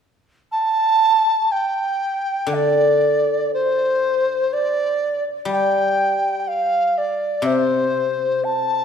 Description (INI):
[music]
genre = chinese traditional, Chinese chamber ensemble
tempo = 60 BPM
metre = 2/4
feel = rubato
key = G shang mode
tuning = A4 = 440 Hz
[part]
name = mellow large dizi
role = melody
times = 0.5-8.8 s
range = C5 to A5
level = -18 LUFS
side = right 1 dB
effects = none
[part]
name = guzheng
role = accompaniment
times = 2.5-8.8 s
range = C3 to G3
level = -21 LUFS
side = left 2 dB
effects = none
[sound]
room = wet scoring stage reverb, RT60 1.8 s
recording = recorded in a church or concert hall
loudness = -17 LUFS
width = side -7 dB against mid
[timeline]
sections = 0.0-1.5 A section; 1.5-8.8 B section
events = none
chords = none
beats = 0.50 | 1.49 2.50 | 3.50 4.49 | 5.47 6.46 | 7.44 8.44